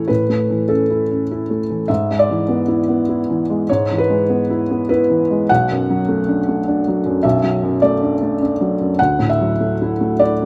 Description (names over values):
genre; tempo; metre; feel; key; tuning
neoclassical minimalist piano; 101 BPM; 3/4; rubato; B dorian; A4 = 440 Hz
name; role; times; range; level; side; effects
felt-muted upright piano; solo; 0.0-10.5 s; B1 to F#5; -17 LUFS; equal; none
room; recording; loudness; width
moderate lush hall reverb, RT60 2.8 s; rough home demo mix; -17 LUFS; mono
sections
0.0-10.5 A section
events
none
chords
0.0 A; 1.9 E/G#; 5.5 Bm7; 9.0 Dadd9